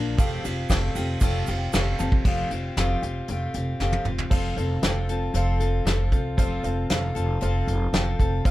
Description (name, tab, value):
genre	folk rock and heartland rock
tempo	116 BPM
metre	4/4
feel	straight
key	F major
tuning	A4 = 440 Hz
part	clear upright piano	accompaniment	0.0-8.5 s	F4 to A5	-35 LUFS	right 1 dB	none
part	picked steel-string acoustic guitar	accompaniment	0.0-8.5 s	F3 to Bb4	-29 LUFS	left 2 dB	none
part	upright bass	bass	0.0-8.5 s	F1 to C2	-26 LUFS	equal	none
part	soft brush drum kit	drums	0.2-8.5 s	crash cymbal, hi-hat, kick drum, ride cymbal, snare drum, toms	-25 LUFS	equal	none
part	egg shaker	percussion	0.2-2.1 s	none	-42 LUFS	right 6 dB	none
room	light reverb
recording	dark, warm production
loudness	-22 LUFS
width	side -16 dB against mid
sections	0.0-2.2 A section; 2.2-4.3 B section; 4.3-8.5 C section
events	upright piano fill 0.7-2.2; drum fill 2.0, 3.8-4.3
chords	0.2 Fadd9